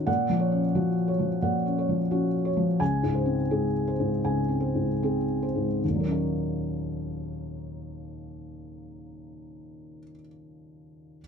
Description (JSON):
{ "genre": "neoclassical minimalist piano", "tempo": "73-92 BPM", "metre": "4/4", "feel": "rubato", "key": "Eb dorian", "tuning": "A4 = 439 Hz", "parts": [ { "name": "felt-muted upright piano", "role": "solo", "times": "0.0-11.2 s", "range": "Db2 to Ab5", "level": "-26 LUFS", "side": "equal", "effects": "none" } ], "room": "light reverb", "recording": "none", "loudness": "-24 LUFS", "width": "side -6 dB against mid", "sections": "0.0-5.8 A section; 5.8-9.0 B section", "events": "slowing down 0.0-5.8", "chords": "0.1 Gbmaj7/Bb; 2.8 Db5; 5.8 Ebm7" }